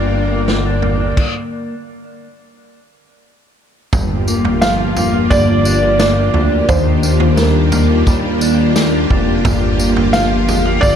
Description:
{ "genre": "dream pop", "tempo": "87 BPM", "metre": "4/4", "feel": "straight", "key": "unclear", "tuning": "A4 = 440 Hz", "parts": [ { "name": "string machine, violas", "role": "sustained chords", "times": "0.0-11.0 s", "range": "Eb3 to G5", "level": "-18 LUFS", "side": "right 1 dB", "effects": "ensemble chorus" }, { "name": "mellow electric guitar", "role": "arpeggios", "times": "0.0-11.0 s", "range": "G2 to D4", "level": "-18 LUFS", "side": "left 4 dB", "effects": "lush chorus, ping-pong delay" }, { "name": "chorused synth bass", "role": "bass", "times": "0.0-11.0 s", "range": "F1 to Eb2", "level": "-18 LUFS", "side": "equal", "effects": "none" }, { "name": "vintage drum kit", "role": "drums", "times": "0.5-11.0 s", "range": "crash cymbal, kick drum, snare drum, tambourine, toms", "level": "-18 LUFS", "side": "right 1 dB", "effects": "none" }, { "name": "felt-muted upright piano", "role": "melody", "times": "4.6-11.0 s", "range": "Bb4 to F5", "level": "-18 LUFS", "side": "right 1 dB", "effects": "ping-pong delay" } ], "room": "moderate concert hall reverb, RT60 2.1 s", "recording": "none", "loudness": "-12 LUFS", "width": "side -8 dB against mid", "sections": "0.0-3.9 A section; 3.9-11.0 B section", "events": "stop 1.2-3.9", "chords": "0.0 Gm7; 1.2 N.C.; 3.9 Gm7; 6.7 Ebmaj7; 9.4 Gm7" }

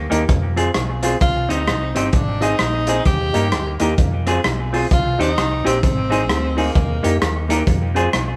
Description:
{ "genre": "ska", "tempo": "130 BPM", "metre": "4/4", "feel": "swing 61% on 8ths", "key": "unclear", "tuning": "A4 = 441 Hz", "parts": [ { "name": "warm tenor saxophone", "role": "melody", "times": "0.0-7.5 s", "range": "Bb3 to G4", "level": "-25 LUFS", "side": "equal", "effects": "none" }, { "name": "fingered electric bass with an envelope filter", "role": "bass", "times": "0.0-8.4 s", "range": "G1 to G2", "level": "-25 LUFS", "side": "equal", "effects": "none" }, { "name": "semi-hollow electric guitar", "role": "accompaniment", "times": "0.1-8.1 s", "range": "Bb3 to Ab4", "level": "-25 LUFS", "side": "equal", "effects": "dub echo" }, { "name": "dark upright piano", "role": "stabs", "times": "0.1-8.0 s", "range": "Eb4 to C5", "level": "-28 LUFS", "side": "equal", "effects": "none" }, { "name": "crunchy breakbeat drum kit", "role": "drums", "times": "0.1-8.3 s", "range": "hi-hat, kick drum, rim click", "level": "-23 LUFS", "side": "equal", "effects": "none" } ], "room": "moderate studio reverb, RT60 0.9 s", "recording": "band playing live in one room, vinyl crackle", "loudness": "-18 LUFS", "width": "mono", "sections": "0.0-8.4 A section", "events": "none", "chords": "0.3 Fm; 1.2 Cm; 2.1 Ab; 3.1 Eb; 4.0 Fm; 4.9 Cm; 5.8 Ab; 6.8 Eb; 7.7 Fm" }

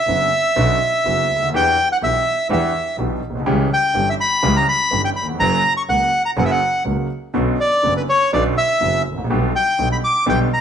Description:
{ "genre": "tango", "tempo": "124 BPM", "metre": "4/4", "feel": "rubato", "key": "B harmonic minor", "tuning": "A4 = 440 Hz", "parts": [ { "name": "bandoneon", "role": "melody", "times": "0.0-10.6 s", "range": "B4 to D6", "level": "-17 LUFS", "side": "equal", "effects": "none" }, { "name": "warm concert grand piano", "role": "accompaniment", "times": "0.1-10.5 s", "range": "F#1 to G4", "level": "-21 LUFS", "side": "right 1 dB", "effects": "none" }, { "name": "clear double bass", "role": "bass", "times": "0.1-10.5 s", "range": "F#1 to E2", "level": "-24 LUFS", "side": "equal", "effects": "none" } ], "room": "moderate stone room reverb, RT60 1.1 s", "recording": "band playing live in one room, nothing above 10.5 kHz", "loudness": "-15 LUFS", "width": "side -8 dB against mid", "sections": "0.0-10.6 A section", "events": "none", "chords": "0.0 Bmadd9; 1.5 Em7; 3.5 C#dim; 5.4 F#; 7.3 Bmadd9; 9.3 G/B" }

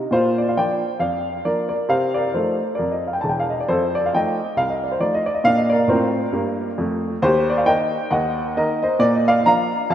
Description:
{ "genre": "jazz, stride piano", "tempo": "135 BPM", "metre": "4/4", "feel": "swing 58% on 8ths", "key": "Bb major", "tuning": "A4 = 440 Hz", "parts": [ { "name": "warm upright piano", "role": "solo", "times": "0.0-9.9 s", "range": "E1 to Bb5", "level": "-18 LUFS", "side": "equal", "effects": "diffuse ambient delay" } ], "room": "wet lush hall reverb, RT60 2.8 s", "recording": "dreamy mix soaked in reverb", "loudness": "-18 LUFS", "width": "side -10 dB against mid", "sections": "0.1-9.9 A section", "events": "none", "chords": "0.1 Bb; 1.9 F7/C; 3.7 F9; 5.5 Bb; 7.2 Eb; 8.1 Ebm; 9.0 Bb" }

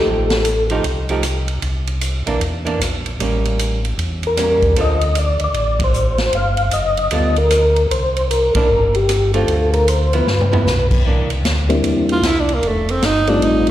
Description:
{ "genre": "soul jazz organ trio", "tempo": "153 BPM", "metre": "4/4", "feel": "swing 64% on 8ths", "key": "C mixolydian", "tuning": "A4 = 440 Hz", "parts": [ { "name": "percussive tonewheel organ", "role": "melody", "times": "0.0-0.7, 4.3-13.7 s", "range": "G3 to F5", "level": "-17 LUFS", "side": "left 2 dB", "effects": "slow rotary speaker, chorus vibrato, slapback echo" }, { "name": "archtop guitar, miked and amplified", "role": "accompaniment", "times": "0.0-11.3 s", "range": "D3 to A4", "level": "-22 LUFS", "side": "right 3 dB", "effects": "slapback echo" }, { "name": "mellow tonewheel organ", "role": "bass", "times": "0.1-13.7 s", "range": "F1 to G2", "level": "-19 LUFS", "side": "equal", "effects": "slow rotary speaker" }, { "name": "swinging big-band drum kit", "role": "drums", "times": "0.3-13.7 s", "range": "crash cymbal, hi-hat, kick drum, ride cymbal, rim click, snare drum, toms", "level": "-22 LUFS", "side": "equal", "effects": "none" }, { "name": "breathy tenor saxophone", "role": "melody", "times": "12.1-13.7 s", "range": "A3 to F4", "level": "-16 LUFS", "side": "right 2 dB", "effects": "slapback echo" } ], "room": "light reverb, small room ambience", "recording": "live gig heard through the venue's PA, recital hall reverb", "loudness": "-14 LUFS", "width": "side -12 dB against mid", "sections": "0.0-11.1 A section; 11.1-13.7 B section", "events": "band accent 5.7, 8.5; drum fill 10.3-10.7; tenor saxophone solo 11.1-13.7", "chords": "0.0 F9; 1.6 C9; 3.2 A7b9; 4.8 Dm7; 6.3 G9; 7.9 C7sus2; 9.5 Dm7; 10.3 G6; 11.1 C9; 12.6 F9" }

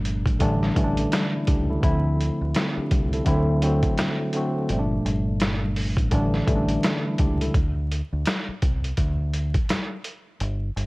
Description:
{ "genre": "hip hop, boom-bap hip-hop", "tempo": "84 BPM", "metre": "4/4", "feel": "swing 60% on 16ths", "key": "D minor", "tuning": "A4 = 440 Hz", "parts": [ { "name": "tine electric piano", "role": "accompaniment", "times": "0.0-7.6 s", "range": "Bb2 to A4", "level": "-24 LUFS", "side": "equal", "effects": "medium stereo tremolo, cassette tape" }, { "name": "deep dub fingered electric bass", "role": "bass", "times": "0.0-10.9 s", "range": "G1 to D2", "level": "-25 LUFS", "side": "equal", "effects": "none" }, { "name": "trip hop sampler-style drum kit", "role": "drums", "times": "0.1-10.9 s", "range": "hi-hat, kick drum, snare drum", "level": "-24 LUFS", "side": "equal", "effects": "none" } ], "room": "little or no reverb", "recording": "worn, warbling old tape, cassette tape, vinyl crackle, warbly pitch drift", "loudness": "-21 LUFS", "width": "side -24 dB against mid", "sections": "0.0-10.9 A section", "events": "break 7.5-10.9", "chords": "0.4 A7sus4; 1.8 Dm7; 3.3 D7; 4.7 Gm7; 6.1 A7sus4; 7.5 Csus2; 9.0 N.C." }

